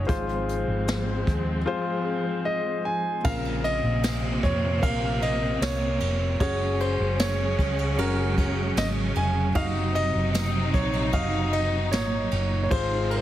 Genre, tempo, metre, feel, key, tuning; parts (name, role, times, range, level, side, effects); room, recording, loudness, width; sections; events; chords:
pop ballad; 76 BPM; 4/4; straight; Bb minor; A4 = 440 Hz
warm concert grand piano; melody; 0.0-13.2 s; Bb4 to Ab5; -30 LUFS; right 1 dB
warm upright piano; accompaniment; 0.0-13.2 s; Ab2 to Eb5; -31 LUFS; left 2 dB
warm studio string section; sustained chords; 0.0-13.2 s; Bb2 to C5; -32 LUFS; equal
hollow-body short-scale fingered electric bass; bass; 0.0-13.2 s; F1 to F2; -28 LUFS; equal
jazz brush drum kit; drums; 0.1-13.2 s; crash cymbal, hi-hat, kick drum, ride cymbal, snare drum; -30 LUFS; equal
bright symphonic cello section; second line; 3.2-13.2 s; Bb2 to Db4; -32 LUFS; right 1 dB; ping-pong delay
tambourine; percussion; 4.0-12.1 s; -39 LUFS; right 7 dB
light reverb; heavily compressed radio sound; -23 LUFS; side -12 dB against mid
0.0-3.2 A section; 3.2-13.2 B section
0.1 Ab6; 3.2 Bbmadd9; 6.4 Gbsus2; 9.6 Ebm7/Gb